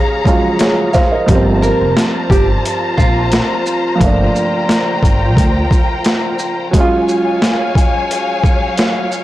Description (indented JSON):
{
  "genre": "hip hop, boom-bap hip-hop",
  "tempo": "88 BPM",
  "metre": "4/4",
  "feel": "swing 55% on 16ths",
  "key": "G minor",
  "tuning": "A4 = 440 Hz",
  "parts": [
    { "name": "dark upright piano", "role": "accompaniment", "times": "0.0-9.2 s", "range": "F3 to F5", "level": "-17 LUFS", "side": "right 2 dB", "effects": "cassette tape, high-pass filter, low-pass filter" },
    { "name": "warm symphonic string section", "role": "sustained chords", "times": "0.0-9.2 s", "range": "F#3 to Bb5", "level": "-18 LUFS", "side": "left 2 dB", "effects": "high-pass filter, low-pass filter" },
    { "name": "boom bap sampler-style drum kit", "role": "drums", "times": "0.3-9.2 s", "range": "hi-hat, kick drum, shaker, snare drum", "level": "-14 LUFS", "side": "equal", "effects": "overdrive" },
    { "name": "upright bass", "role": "bass", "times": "1.3-5.6 s", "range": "F1 to D2", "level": "-17 LUFS", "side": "equal", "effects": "transformer saturation" },
    { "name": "nylon-string guitar", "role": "melody", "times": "1.6-3.3 s", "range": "F4 to Bb4", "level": "-19 LUFS", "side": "right 2 dB", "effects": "high-pass filter, low-pass filter, tape echo" }
  ],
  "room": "moderate studio reverb, RT60 0.6 s",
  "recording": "blown-out, overdriven recording, vinyl crackle, overdrive",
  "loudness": "-11 LUFS",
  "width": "side -15 dB against mid",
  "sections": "0.0-9.2 A section",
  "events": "break 0.0-1.3",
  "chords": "0.0 Ebm11; 1.3 Gm11; 6.7 F#maj7sus2"
}